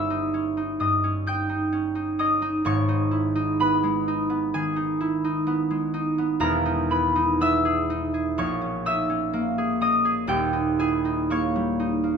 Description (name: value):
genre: classical, solo harp piece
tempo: 63 BPM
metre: 4/4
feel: rubato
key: G# minor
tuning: A4 = 440 Hz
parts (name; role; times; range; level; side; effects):
- concert harp; solo; 0.0-12.2 s; D#1 to G6; -22 LUFS; equal; none
room: moderate recital hall reverb, RT60 1.4 s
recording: minimal, uncompressed stereo recording, faint mains hum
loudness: -22 LUFS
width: side -6 dB against mid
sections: 0.0-12.2 A section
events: none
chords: 0.0 D#7/G; 2.7 G#m; 6.4 Emaj7; 8.4 A#m7b5; 10.3 D#7